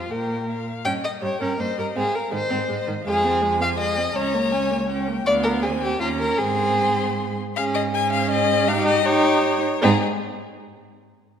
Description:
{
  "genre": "quick classical-period movement for string quartet",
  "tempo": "162 BPM",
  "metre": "3/4",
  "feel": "straight",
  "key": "Ab major",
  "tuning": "A4 = 435 Hz",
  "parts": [
    { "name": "rich violin", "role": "melody", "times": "0.0-10.0 s", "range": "Ab4 to C6", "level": "-26 LUFS", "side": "left 7 dB", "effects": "none" },
    { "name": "dark violin", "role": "second line", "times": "0.0-10.0 s", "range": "Eb4 to G5", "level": "-23 LUFS", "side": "left 1 dB", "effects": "none" },
    { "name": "rich viola", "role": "accompaniment", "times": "0.0-10.0 s", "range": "Eb3 to Eb4", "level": "-26 LUFS", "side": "right 3 dB", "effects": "none" },
    { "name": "rich cello", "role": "bass", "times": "0.0-10.0 s", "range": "Db2 to Bb2", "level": "-28 LUFS", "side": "right 5 dB", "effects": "none" }
  ],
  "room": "moderate concert hall reverb, RT60 2.0 s",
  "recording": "none",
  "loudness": "-19 LUFS",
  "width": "side -8 dB against mid",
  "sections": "0.0-7.6 A section; 7.6-9.8 B section; 9.8-11.0 C section",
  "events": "none",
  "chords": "0.0 Bb5/F; 0.9 Eb7; 2.0 Ab; 3.1 Fm; 4.2 Bbm/Db; 5.3 Dm6; 5.6 Ab/Eb; 6.0 Eb5; 6.4 Ab; 7.6 Db5/Ab; 8.7 Eb7/Ab; 9.8 Ab"
}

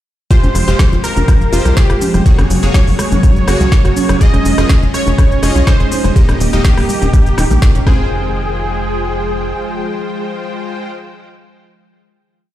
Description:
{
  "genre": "progressive house",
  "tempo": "123 BPM",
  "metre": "4/4",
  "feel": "straight",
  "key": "F minor",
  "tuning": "A4 = 440 Hz",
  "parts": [
    { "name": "plucky unison lead", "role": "melody", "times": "0.3-10.9 s", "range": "G4 to Eb5", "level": "-21 LUFS", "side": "equal", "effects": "wide subtle chorus, cassette tape, sidechain pumping, digital delay" },
    { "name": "evolving wavetable pad", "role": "sustained chords", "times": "1.0-10.9 s", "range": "Eb3 to G5", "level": "-23 LUFS", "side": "right 2 dB", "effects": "chorus, built-in reverb, sidechain pumping" },
    { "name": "wide unison pluck", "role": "arpeggios", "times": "0.3-10.9 s", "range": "F3 to Bb4", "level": "-21 LUFS", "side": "right 1 dB", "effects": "sidechain pumping, digital delay" },
    { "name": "supersaw stab", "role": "stabs", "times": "0.3-10.9 s", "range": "Ab3 to G5", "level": "-22 LUFS", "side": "left 1 dB", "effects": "sidechain pumping, digital delay" },
    { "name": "deep house drum kit", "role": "drums", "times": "0.3-7.8 s", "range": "hi-hat, shaker, snare drum", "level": "-23 LUFS", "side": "equal", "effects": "none" },
    { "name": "electronic kick drum", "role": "drums", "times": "0.3-8.0 s", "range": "none", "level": "-11 LUFS", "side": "equal", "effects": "none" },
    { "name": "tight sequencer bass", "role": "bass", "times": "0.4-9.5 s", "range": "Eb1 to Db2", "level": "-15 LUFS", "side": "equal", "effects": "tube saturation, sidechain pumping" },
    { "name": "electronic congas and rim click", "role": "percussion", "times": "0.4-8.0 s", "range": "none", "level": "-23 LUFS", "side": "left 2 dB", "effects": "sidechain pumping on perc, sidechain pumping on snare" }
  ],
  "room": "little or no reverb",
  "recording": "played on a big sound system in a bare room, stone room reverb",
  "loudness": "-10 LUFS",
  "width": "side -13 dB against mid",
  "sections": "0.3-8.1 drop; 8.1-12.0 final hit",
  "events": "drop 0.3-8.1",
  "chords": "0.3 Fmadd9; 2.3 Gbadd9; 4.2 Dbadd9/F; 6.2 Eb; 7.9 Fmadd9"
}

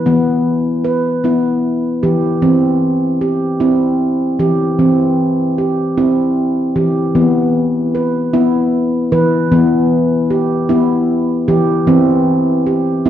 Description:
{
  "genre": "world meditative",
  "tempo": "51 BPM (dotted quarters)",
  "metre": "6/8",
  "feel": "straight",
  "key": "E hirajoshi",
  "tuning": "A4 = 440 Hz",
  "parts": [
    { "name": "handpan", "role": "solo", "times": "0.0-13.1 s", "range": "E3 to B4", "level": "-12 LUFS", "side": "equal", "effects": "none" }
  ],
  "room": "wet echo chamber reverb, RT60 1.6 s, studio ambience",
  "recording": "worn, warbling old tape, cassette tape, warbly pitch drift",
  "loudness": "-12 LUFS",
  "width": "side -10 dB against mid",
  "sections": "0.0-7.1 A section; 7.1-13.1 B section",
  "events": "none",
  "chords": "0.0 Em; 2.4 C/E; 7.1 Em; 11.9 C/E"
}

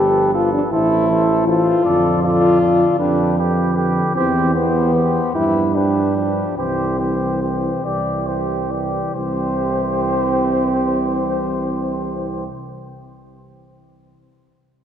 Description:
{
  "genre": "classical, brass quintet",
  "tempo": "45-53 BPM (dotted quarters)",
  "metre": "6/8",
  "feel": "rubato",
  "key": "C major",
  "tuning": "A4 = 439 Hz",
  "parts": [
    { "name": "mellow cornet", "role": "melody", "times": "0.0-12.5 s", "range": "B4 to D5", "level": "-25 LUFS", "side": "left 6 dB", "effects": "none" },
    { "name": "warm flugelhorn", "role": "second line", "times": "0.0-12.5 s", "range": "G4 to A4", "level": "-25 LUFS", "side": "right 5 dB", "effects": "none" },
    { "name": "mellow trombone", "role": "accompaniment", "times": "0.0-12.5 s", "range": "D3 to F3", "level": "-28 LUFS", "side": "right 2 dB", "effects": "none" },
    { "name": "warm French horn", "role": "accompaniment", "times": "0.0-12.5 s", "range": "B3 to G4", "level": "-19 LUFS", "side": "left 2 dB", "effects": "none" },
    { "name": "mellow tuba", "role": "bass", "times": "0.0-12.5 s", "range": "G1 to G2", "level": "-22 LUFS", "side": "right 3 dB", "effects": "none" }
  ],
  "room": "wet church reverb, RT60 3.6 s",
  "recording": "worn, warbling old tape, cassette tape, warbly pitch drift",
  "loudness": "-16 LUFS",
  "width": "side -9 dB against mid",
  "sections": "0.0-9.1 A section; 9.1-11.7 B section",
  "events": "slowing down 3.0-9.1",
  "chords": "0.0 G9; 0.7 Am; 1.9 Dm/F; 4.2 C/E; 5.3 G7; 6.6 C"
}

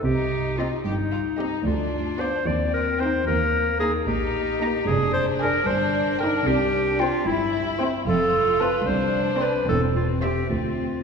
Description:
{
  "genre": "cinematic, playful, whimsical film cue",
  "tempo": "75 BPM (dotted quarters)",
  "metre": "6/8",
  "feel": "straight",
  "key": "C minor",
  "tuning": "A4 = 440 Hz",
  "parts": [
    { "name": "bright clarinet", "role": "second line", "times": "0.0-11.0 s", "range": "Eb4 to D5", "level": "-24 LUFS", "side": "left 1 dB", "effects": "none" },
    { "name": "rich chamber violin section", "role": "second line", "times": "0.0-11.0 s", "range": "Bb3 to G4", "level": "-29 LUFS", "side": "left 3 dB", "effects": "none" },
    { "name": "clear chamber double bass section", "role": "bass", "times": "0.0-11.0 s", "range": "E1 to Eb2", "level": "-29 LUFS", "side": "right 2 dB", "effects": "none" },
    { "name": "dark chamber cello section", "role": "bass", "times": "0.0-11.0 s", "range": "C2 to C3", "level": "-30 LUFS", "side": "right 2 dB", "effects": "none" },
    { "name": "clear chamber violin section", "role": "melody", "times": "0.6-10.4 s", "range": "D5 to Bb5", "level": "-36 LUFS", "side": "left 3 dB", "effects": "none" },
    { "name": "warm chamber viola section", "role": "accompaniment", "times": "0.6-10.4 s", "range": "Bb3 to C5", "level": "-32 LUFS", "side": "right 1 dB", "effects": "none" }
  ],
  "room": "wet church reverb, RT60 3.0 s",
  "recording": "recorded in a church or concert hall",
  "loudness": "-20 LUFS",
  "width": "side -5 dB against mid",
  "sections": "0.0-11.0 A section",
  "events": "none",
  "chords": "0.0 Cm; 1.7 Bdim/D; 2.5 Cm/Eb; 3.3 Eb; 4.9 Ddim/F; 5.7 Eb/G; 6.5 C; 8.1 F; 9.7 C/E; 10.5 Dm7"
}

